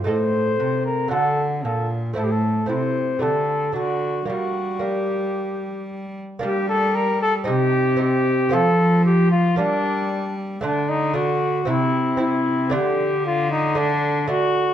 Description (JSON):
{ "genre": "classical, renaissance-style consort dance", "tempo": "114 BPM", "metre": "4/4", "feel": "straight", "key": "G minor", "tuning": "A4 = 438 Hz", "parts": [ { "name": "lute", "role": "accompaniment", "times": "0.0-14.7 s", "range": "A2 to A4", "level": "-25 LUFS", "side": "right 2 dB", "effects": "none" }, { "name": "rich cello", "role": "bass", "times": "0.0-14.7 s", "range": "A2 to G3", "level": "-24 LUFS", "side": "equal", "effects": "none" }, { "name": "mellow cornet", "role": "melody", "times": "0.1-14.7 s", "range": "D4 to C5", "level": "-22 LUFS", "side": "left 2 dB", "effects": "none" } ], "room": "wet stone room reverb, RT60 1.2 s", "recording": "dark, warm production", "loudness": "-19 LUFS", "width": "side -10 dB against mid", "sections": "0.0-6.4 A section; 6.4-14.7 A section", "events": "none", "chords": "0.1 Adim; 1.1 D; 2.2 Am; 3.2 Dsus4; 3.8 D; 4.3 Gm; 7.5 Cm; 8.5 F; 9.6 Gm; 10.6 D; 11.7 C; 12.7 Dsus4", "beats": "| 0.07 0.60 1.12 1.65 | 2.17 2.70 3.22 3.76 | 4.29 4.83 5.36 5.89 | 6.43 6.95 7.48 8.01 | 8.53 9.06 9.58 10.11 | 10.63 11.16 11.68 12.21 | 12.73 13.26 13.78 14.30" }